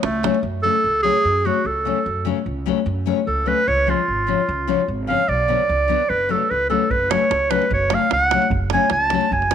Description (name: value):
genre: balkan folk, Balkan wedding band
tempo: 148 BPM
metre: 2/4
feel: swing 54% on 16ths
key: F# harmonic minor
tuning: A4 = 440 Hz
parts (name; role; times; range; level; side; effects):
- bright clarinet; melody; 0.0-9.5 s; A3 to A5; -19 LUFS; right 2 dB; none
- upright bass; bass; 0.0-9.5 s; F#1 to F#2; -26 LUFS; right 1 dB; none
- davul; percussion; 0.0-0.4, 6.9-9.5 s; none; -26 LUFS; right 7 dB; none
- nylon-string guitar; accompaniment; 0.2-9.5 s; C#3 to D4; -23 LUFS; left 11 dB; none
room: moderate echo chamber reverb, RT60 2.0 s, studio reverb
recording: 1960s-style stereo with parts hard left and right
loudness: -17 LUFS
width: side -8 dB against mid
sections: 0.4-9.5 A section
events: clarinet solo 0.4-9.5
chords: 0.4 F#m; 3.7 C#; 5.3 Bm; 6.1 F#m